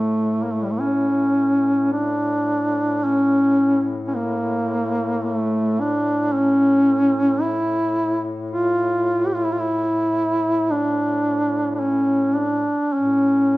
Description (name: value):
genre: caucasian folk, Caucasian lament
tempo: 54 BPM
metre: 3/4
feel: rubato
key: unclear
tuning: A4 = 439 Hz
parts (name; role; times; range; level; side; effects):
- mellow duduk; melody; 0.0-13.6 s; G3 to G4; -18 LUFS; equal; none
- mellow duduk; drone; 0.0-13.6 s; A2; -28 LUFS; left 3 dB; none
room: wet recital hall reverb, RT60 1.4 s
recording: none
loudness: -18 LUFS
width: side -18 dB against mid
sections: 0.0-13.6 A section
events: none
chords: none